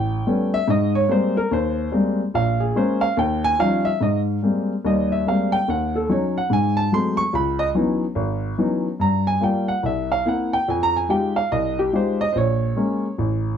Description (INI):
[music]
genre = solo jazz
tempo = 144 BPM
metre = 4/4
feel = swing 65% on 8ths, rubato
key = Ab major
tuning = A4 = 436 Hz
[part]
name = warm baby grand piano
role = solo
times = 0.0-13.5 s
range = Ab1 to Db6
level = -18 LUFS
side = equal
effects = none
[sound]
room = light reverb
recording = dark, warm production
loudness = -18 LUFS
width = side -8 dB against mid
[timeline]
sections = 0.0-4.0 A section; 4.0-13.6 A section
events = grand piano solo 0.0-13.6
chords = 0.0 A9; 0.7 Abmaj9; 2.3 Bbm7; 3.2 Eb9; 4.0 Abmaj9; 5.7 Ebm7b5; 6.5 Ab7b9; 7.3 Dbm11; 9.0 Gm7; 9.8 C7; 10.7 Fm9; 12.3 Bbm7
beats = 0.26 | 0.68 1.09 1.50 1.92 | 2.33 2.74 3.16 3.59 | 4.01 4.43 4.85 5.26 | 5.68 6.10 6.51 6.93 | 7.34 7.75 8.17 8.58 | 9.00 9.42 9.84 10.26 | 10.68 11.10 11.51 11.93 | 12.35 12.76 13.18